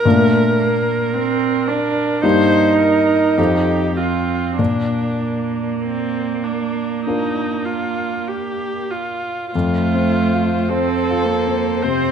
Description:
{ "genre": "classical, slow romantic movement for piano quartet", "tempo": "47-56 BPM", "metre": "4/4", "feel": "rubato", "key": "Bb major", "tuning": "A4 = 442 Hz", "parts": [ { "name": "muted cello", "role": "second line", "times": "0.0-12.1 s", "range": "A3 to Eb4", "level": "-19 LUFS", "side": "right 5 dB", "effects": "none" }, { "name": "muted viola", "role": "accompaniment", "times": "0.0-12.1 s", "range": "C4 to C5", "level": "-22 LUFS", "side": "equal", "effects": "none" }, { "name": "warm baby grand piano", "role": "accompaniment", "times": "0.0-12.1 s", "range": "F2 to C5", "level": "-20 LUFS", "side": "left 4 dB", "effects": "none" }, { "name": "muted violin", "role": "melody", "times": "9.6-12.1 s", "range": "C5", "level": "-26 LUFS", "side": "left 11 dB", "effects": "none" } ], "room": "moderate recital hall reverb, RT60 1.4 s", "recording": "none", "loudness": "-16 LUFS", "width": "side -7 dB against mid", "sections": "0.0-9.5 A section; 9.5-12.1 B section", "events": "none", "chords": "0.0 Bb; 2.2 Eb/G; 3.4 F7; 4.6 Bb; 9.5 F" }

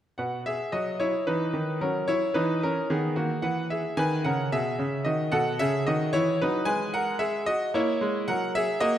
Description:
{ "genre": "classical, baroque-style suite movement for grand piano", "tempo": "111 BPM", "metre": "3/4", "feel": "rubato", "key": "B major", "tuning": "A4 = 440 Hz", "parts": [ { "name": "bright concert grand piano", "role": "solo", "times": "0.2-9.0 s", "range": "B2 to G#5", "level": "-24 LUFS", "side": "equal", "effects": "none" } ], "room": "wet concert hall reverb, RT60 2.3 s", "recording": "none", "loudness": "-24 LUFS", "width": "side -11 dB against mid", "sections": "0.2-9.0 A section", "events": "none", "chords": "0.2 B; 1.8 F#5; 2.9 B/D#; 3.4 E; 5.1 B7; 6.1 E5; 6.7 G#m9; 7.7 A#dim; 8.3 F#13" }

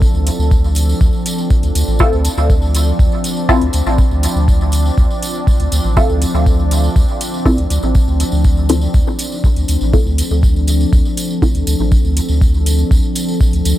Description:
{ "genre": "dub techno", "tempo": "121 BPM", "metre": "4/4", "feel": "straight", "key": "D minor", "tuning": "A4 = 440 Hz", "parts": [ { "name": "deep dark ambient pad", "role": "sustained chords", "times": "0.0-13.8 s", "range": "F3 to D5", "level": "-21 LUFS", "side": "equal", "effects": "chorus, built-in reverb, sidechain pumping" }, { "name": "warm sub bass", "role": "bass", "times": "0.0-13.7 s", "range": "A1 to D2", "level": "-15 LUFS", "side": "equal", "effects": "sidechain pumping" }, { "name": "electronic kick drum", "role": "drums", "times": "0.0-13.5 s", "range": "none", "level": "-13 LUFS", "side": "equal", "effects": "overdrive" }, { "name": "tambourine", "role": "percussion", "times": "0.0-13.8 s", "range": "none", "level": "-28 LUFS", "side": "right 2 dB", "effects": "none" }, { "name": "electronic hi-hat", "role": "drums", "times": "0.3-13.8 s", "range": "none", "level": "-24 LUFS", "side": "equal", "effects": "overdrive" }, { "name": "filtered dub chord stab", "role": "stabs", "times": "2.0-11.5 s", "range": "C4 to A4", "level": "-21 LUFS", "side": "equal", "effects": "phaser, sidechain pumping, dub echo" } ], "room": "digital ambience", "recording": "none", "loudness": "-12 LUFS", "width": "side -14 dB against mid", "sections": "0.0-13.8 A section", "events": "filter sweep on synth stab 0.0-13.8", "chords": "0.0 Dm7" }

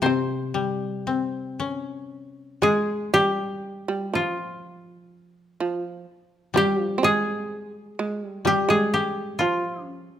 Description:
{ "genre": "japanese traditional, Japanese chamber music", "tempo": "57-64 BPM", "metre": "4/4", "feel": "rubato", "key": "C miyako bushi", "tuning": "A4 = 441 Hz", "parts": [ { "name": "koto", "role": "melody", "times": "0.0-10.2 s", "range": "F4 to C5", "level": "-24 LUFS", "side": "left 2 dB", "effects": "none" }, { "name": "koto", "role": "accompaniment", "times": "0.0-10.2 s", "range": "C3 to Db4", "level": "-27 LUFS", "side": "left 6 dB", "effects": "none" }, { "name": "shamisen", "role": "second line", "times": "0.1-10.1 s", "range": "F3 to C4", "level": "-26 LUFS", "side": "right 4 dB", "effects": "none" } ], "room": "moderate recital hall reverb, RT60 1.6 s", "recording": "close, detailed microphones", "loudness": "-22 LUFS", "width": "side -10 dB against mid", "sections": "0.0-2.6 A section; 2.6-10.2 B section", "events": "none", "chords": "none" }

